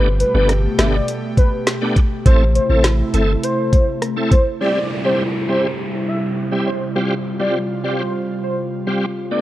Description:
dancehall; 102 BPM; 4/4; straight; A4 = 443 Hz
warm velvety synth lead; melody; 0.0-9.4 s; A4 to E5; -22 LUFS; equal; chorus
bright tonewheel organ; accompaniment; 0.0-9.4 s; G3 to A4; -22 LUFS; equal; overdrive, chorus vibrato, fast rotary speaker
airy breathy pad; sustained chords; 0.0-9.4 s; B2 to G4; -23 LUFS; equal; chorus, sidechain pumping
punchy sub bass; bass; 0.0-3.4 s; G1 to A1; -17 LUFS; equal
island pop drum kit; drums; 0.2-4.5 s; hi-hat, kick drum, rim click, snare drum; -15 LUFS; equal
downlifter; sound effects; 4.6-9.3 s; -31 LUFS; equal
digital ambience; worn, warbling old tape, cassette tape, warbly pitch drift; -15 LUFS; side -14 dB against mid
0.0-4.6 A section; 4.6-9.4 B section
0.0 Gadd9; 2.3 Am; 4.6 C; 7.0 Fsus2
0.49 1.08 1.67 | 2.25 2.84 3.43 4.02 | 4.61 5.20 5.79 6.37 | 6.96 7.55 8.14 8.73 | 9.31

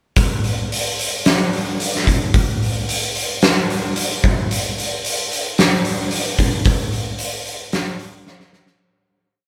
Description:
rock; 111 BPM; 4/4; straight
oversized low-tuned drum kit; drums; 0.2-8.8 s; hi-hat, kick drum, snare drum; -19 LUFS; equal
light reverb; band playing live in one room; -19 LUFS; mono
0.2-8.8 verse
fade-out 6.7-8.8; drum fill 8.3-8.8
| 0.16 0.70 1.25 1.79 | 2.33 2.88 3.42 3.96 | 4.50 5.04 5.58 6.12 | 6.65 7.19 7.72 8.26

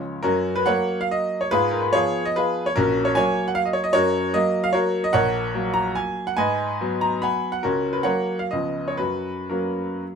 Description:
classical, romantic triple-time dance for piano with dotted rhythms; 113-159 BPM; 3/4; rubato; F# major; A4 = 440 Hz
bright baby grand piano; solo; 0.0-10.2 s; A#1 to B5; -20 LUFS; equal
light reverb; minimal, uncompressed stereo recording; -20 LUFS; side -6 dB against mid
0.2-10.2 A section
0.2 F#; 1.5 G#m69; 2.8 F#/A#; 3.9 F#; 5.1 F#/A#; 6.4 G#m7; 7.6 F#/C#; 8.5 C#7; 9.0 F#
| 0.23 0.67 1.11 | 1.52 1.95 2.37 | 2.76 3.16 3.57 | 3.95 4.34 4.74 | 5.13 5.53 5.96 | 6.37 6.80 7.23 | 7.64 8.06 8.52 | 9.00 9.52 10.02

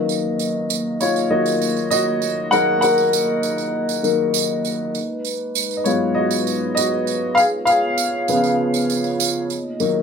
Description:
piano-driven pop; 99 BPM; 4/4; straight; Eb minor; A4 = 440 Hz
warm upright piano; accompaniment; 0.0-10.0 s; Ab2 to Gb5; -18 LUFS; left 2 dB
glass harmonica; sustained chords; 0.0-10.0 s; Ab3 to Eb5; -25 LUFS; right 1 dB
tambourine; percussion; 0.1-9.9 s; -25 LUFS; right 10 dB
moderate studio reverb, RT60 0.5 s; band playing live in one room; -17 LUFS; side -6 dB against mid
0.0-10.0 A section
upright piano solo 0.0-10.0
0.0 Ebm; 4.9 Abm7; 7.4 Db7; 9.5 Ebm
| 0.10 0.70 1.31 1.92 | 2.52 3.13 3.73 4.34 | 4.95 5.55 6.16 6.77 | 7.37 7.98 8.59 9.20 | 9.80

